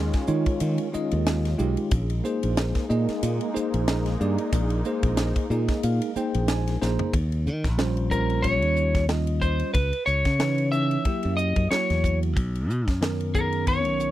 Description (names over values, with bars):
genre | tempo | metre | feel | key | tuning
electric jazz fusion | 92 BPM | 4/4 | swing 56% on 16ths | unclear | A4 = 440 Hz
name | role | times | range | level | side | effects
bell-like tine electric piano | accompaniment | 0.0-14.1 s | D#3 to Bb5 | -28 LUFS | right 1 dB | slow stereo tremolo
sweeping resonant pad | sustained chords | 0.0-7.1 s | Eb3 to F4 | -34 LUFS | equal | chorus
modern bright fingered electric bass | bass | 0.0-14.1 s | Bb1 to Eb3 | -25 LUFS | equal | none
crisp fusion drum kit | drums | 0.1-14.1 s | hi-hat, kick drum, ride cymbal, snare drum, toms | -28 LUFS | equal | none
lightly driven lead guitar | melody | 8.1-14.1 s | Bb4 to Fb5 | -25 LUFS | left 1 dB | none
room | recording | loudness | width
little or no reverb | dry, close 1970s-style studio recording | -22 LUFS | side -14 dB against mid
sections
0.0-7.1 A section; 7.1-14.1 B section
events
tine electric piano fill 5.2-7.1; drum fill 6.8-7.1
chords
0.0 Eb9sus4; 1.9 Bb9sus4; 7.1 Eb13; 9.7 Dbm9; 11.1 Gb7b9; 12.4 Bmaj9